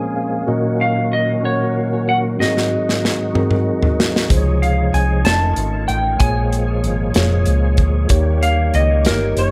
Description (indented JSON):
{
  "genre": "slow gospel",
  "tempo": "63 BPM (dotted quarters)",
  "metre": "6/8",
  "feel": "straight",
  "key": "unclear",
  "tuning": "A4 = 440 Hz",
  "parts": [
    { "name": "mellow tine electric piano", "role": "accompaniment", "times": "0.0-9.5 s", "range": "Ab2 to Ab5", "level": "-24 LUFS", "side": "equal", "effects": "none" },
    { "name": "bright tonewheel organ", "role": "sustained chords", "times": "0.0-9.5 s", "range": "Bb2 to Db5", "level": "-26 LUFS", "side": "equal", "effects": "fast rotary speaker, chorus vibrato" },
    { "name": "clean lap steel guitar", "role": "melody", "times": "0.8-9.5 s", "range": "Bb4 to A5", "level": "-23 LUFS", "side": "equal", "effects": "tape echo" },
    { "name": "modern studio drum kit", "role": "drums", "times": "2.4-9.5 s", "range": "hi-hat, kick drum, snare drum, toms", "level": "-21 LUFS", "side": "equal", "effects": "none" },
    { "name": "hollow-body short-scale fingered electric bass", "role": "bass", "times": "4.3-9.5 s", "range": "F1 to Eb2", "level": "-20 LUFS", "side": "equal", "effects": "none" }
  ],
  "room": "light reverb",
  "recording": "none",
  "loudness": "-17 LUFS",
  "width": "mono",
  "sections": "0.0-9.5 A section",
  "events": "tine electric piano fill 0.0-0.5; drum fill 2.4-4.3",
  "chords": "0.5 Ebm7/Bb; 2.4 Ab7; 4.3 Dbmaj7; 5.3 F7b13; 6.2 Bbm7; 8.1 Eb7"
}